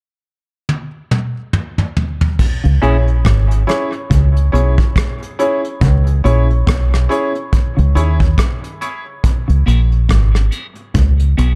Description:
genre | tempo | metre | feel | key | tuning
dub reggae | 70 BPM | 4/4 | swing 58% on 16ths | C# dorian | A4 = 440 Hz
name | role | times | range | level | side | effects
soft brush drum kit | drums | 0.7-11.6 s | crash cymbal, hi-hat, kick drum, rim click, toms | -18 LUFS | equal | none
mellow electric guitar | riff | 2.6-11.5 s | G#2 to D#3 | -23 LUFS | equal | none
deep dub fingered electric bass | bass | 2.7-11.6 s | G#1 to D#2 | -15 LUFS | equal | none
semi-hollow electric guitar | accompaniment | 2.8-3.0, 9.7-11.5 s | C#4 to G#4 | -26 LUFS | equal | high-pass filter, dub echo
clear grand piano | stabs | 2.8-9.9 s | C#4 to C#5 | -23 LUFS | equal | high-pass filter, dub echo
room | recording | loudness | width
small room ambience | dark, warm production | -15 LUFS | mono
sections
0.0-2.4 A section; 2.4-11.6 B section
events
drum fill 0.7-2.4; filter sweep 5.8-11.6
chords
0.0 N.C.; 2.4 C#m

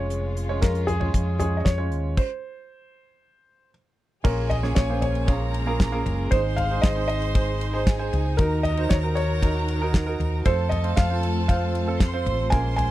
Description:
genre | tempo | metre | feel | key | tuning
piano-driven pop | 116 BPM | 4/4 | straight | Bb minor | A4 = 439 Hz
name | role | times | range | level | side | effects
felt-muted upright piano | melody | 0.0-12.9 s | Ab4 to Ab5 | -29 LUFS | left 1 dB | slapback echo
clear grand piano | accompaniment | 0.0-12.9 s | Ab2 to Db5 | -30 LUFS | right 4 dB | none
warm studio string section | sustained chords | 0.0-12.9 s | Eb3 to Bb4 | -35 LUFS | left 1 dB | none
hollow-body short-scale fingered electric bass | bass | 0.0-12.9 s | F1 to F2 | -25 LUFS | equal | none
damped 70s drum kit | drums | 0.1-12.9 s | crash cymbal, hi-hat, kick drum, ride cymbal, snare drum, toms | -22 LUFS | equal | none
clear studio violin section | second line | 4.2-12.9 s | Ab4 to C6 | -33 LUFS | right 1 dB | slapback echo
room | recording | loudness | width
little or no reverb | dry, close 1970s-style studio recording | -21 LUFS | side -15 dB against mid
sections
0.0-4.2 A section; 4.2-12.9 B section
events
stop 2.2-4.2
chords
0.0 Db/F; 2.2 N.C.; 4.2 Bbm7; 6.3 Ab; 8.4 Ebm; 10.5 F

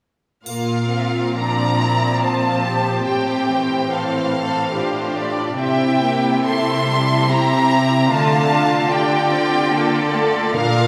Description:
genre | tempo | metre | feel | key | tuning
cinematic, emotional film score for orchestra | 64-74 BPM | 3/4 | rubato | unclear | A4 = 443 Hz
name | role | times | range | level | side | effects
warm symphonic violin section | melody | 0.5-10.9 s | F5 to C6 | -24 LUFS | equal | none
rich symphonic violin section | second line | 0.5-10.9 s | D4 to F5 | -25 LUFS | equal | none
warm symphonic viola section | accompaniment | 0.5-10.9 s | E3 to G4 | -24 LUFS | equal | none
bright symphonic cello section | bass | 0.5-10.9 s | A2 to D3 | -24 LUFS | equal | none
triangle | percussion | 0.5-2.2 s | none | -40 LUFS | equal | none
room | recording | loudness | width
wet church reverb, RT60 3.4 s | recorded in a church or concert hall | -18 LUFS | mono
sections
0.5-10.9 A section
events
none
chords
0.5 Bbsus2; 3.1 Fadd9/A; 5.6 C; 8.1 Dm

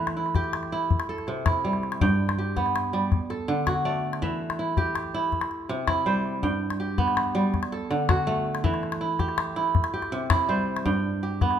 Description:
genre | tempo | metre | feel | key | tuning
west african traditional, West African string and xylophone music | 108 BPM (dotted quarters) | 12/8 | straight | G major | A4 = 440 Hz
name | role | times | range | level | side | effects
kora | arpeggios | 0.0-11.6 s | G2 to G5 | -25 LUFS | right 2 dB | none
calabash | percussion | 0.1-11.6 s | none | -27 LUFS | left 4 dB | none
room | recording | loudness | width
moderate recital hall reverb, RT60 1.6 s | minimal, uncompressed stereo recording | -23 LUFS | side -9 dB against mid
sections
0.0-2.0 A section; 2.0-11.6 A section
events
none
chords
0.0 Em; 0.9 C; 2.0 G; 3.1 D; 4.2 Em; 5.3 C; 6.4 G; 7.5 D; 8.6 Em; 9.8 C; 10.9 G

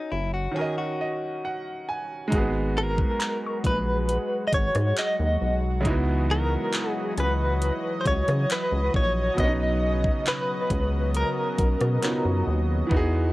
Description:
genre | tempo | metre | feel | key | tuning
contemporary R&B | 68 BPM | 4/4 | straight | G# minor | A4 = 441 Hz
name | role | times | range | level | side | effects
clear baby grand piano | accompaniment | 0.0-13.3 s | B2 to G#5 | -30 LUFS | right 2 dB | cassette tape
direct-recorded clean electric guitar | arpeggios | 0.0-2.1 s | D#4 to G#4 | -32 LUFS | left 4 dB | warbly pitch drift, cassette tape, analog delay
rubbery square bass | bass | 0.1-13.3 s | F#1 to C#3 | -25 LUFS | equal | none
lush unison pad | sustained chords | 2.3-13.3 s | C#3 to D#5 | -32 LUFS | equal | chorus, sidechain pumping, cassette tape
trap drum kit | drums | 2.3-13.1 s | handclaps, hi-hat, kick drum, rim click | -26 LUFS | equal | cassette tape
direct-recorded clean electric guitar | melody | 2.8-12.4 s | A#4 to D#5 | -27 LUFS | equal | tremolo, analog delay
soft round pluck | texture | 3.2-12.7 s | G#5 to D#6 | -37 LUFS | equal | chorus, cassette tape, analog delay
room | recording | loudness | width
light reverb | home recording on cassette | -22 LUFS | side -18 dB against mid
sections
0.0-2.3 A section; 2.3-13.3 B section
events
grand piano fill 0.6-2.3; hi-hats muted 12.9-13.3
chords
0.0 F#7; 0.6 D#m7; 2.3 G#m9; 5.9 C#m11; 9.4 Bmaj9

